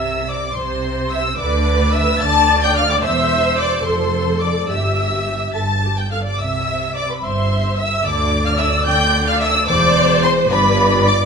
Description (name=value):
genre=quick classical-period movement for string orchestra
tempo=72 BPM (dotted quarters)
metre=6/8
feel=straight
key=C major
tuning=A4 = 440 Hz
part: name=dark symphonic violin section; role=melody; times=0.0-11.3 s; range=B5 to A6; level=-20 LUFS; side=left 1 dB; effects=none
part: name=warm symphonic violin section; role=second line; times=0.0-11.2 s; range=B4 to A5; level=-21 LUFS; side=left 2 dB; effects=none
part: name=dark studio double bass section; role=bass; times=0.0-11.3 s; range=E1 to D2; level=-22 LUFS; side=right 1 dB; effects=none
part: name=warm symphonic cello section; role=bass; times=0.0-11.3 s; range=E2 to D3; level=-23 LUFS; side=equal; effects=none
part: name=warm symphonic viola section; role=accompaniment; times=0.6-11.3 s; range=G4 to E5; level=-22 LUFS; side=right 1 dB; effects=none
room=moderate recital hall reverb, RT60 1.4 s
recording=minimal, uncompressed stereo recording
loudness=-15 LUFS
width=side -6 dB against mid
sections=0.0-11.3 A section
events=none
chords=0.0 C; 1.4 Dsus2; 3.0 C/E; 3.9 F6; 4.7 Em/G; 5.5 Dmadd11/G; 6.4 C; 8.0 Dmadd9; 9.7 C/E; 10.5 G